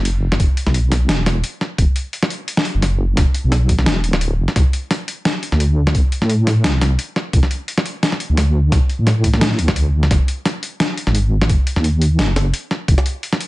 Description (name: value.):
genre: half-time drum and bass.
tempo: 173 BPM.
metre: 4/4.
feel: swing 55% on 16ths, half-time.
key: unclear.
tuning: A4 = 440 Hz.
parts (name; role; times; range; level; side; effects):
deep soft wobble bass; bass; 0.0-13.0 s; D1 to A2; -16 LUFS; equal; chorus.
boom bap sampler-style drum kit; drums; 0.1-13.5 s; hi-hat, snare drum; -20 LUFS; equal; small room reverb.
electronic kick drum; drums; 0.4-13.0 s; none; -16 LUFS; equal; small room reverb.
room: little or no reverb.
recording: nothing above 10.5 kHz.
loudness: -15 LUFS.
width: side -19 dB against mid.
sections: 0.0-13.5 A section.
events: none.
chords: none.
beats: 0.05 | 0.40 0.74 1.09 1.44 | 1.79 2.13 2.48 2.83 | 3.17 3.52 3.87 4.21 | 4.56 4.91 5.25 5.60 | 5.95 6.29 6.64 6.99 | 7.33 7.68 8.03 8.38 | 8.72 9.07 9.42 9.76 | 10.11 10.46 10.80 11.15 | 11.50 11.84 12.19 12.54 | 12.88 13.23.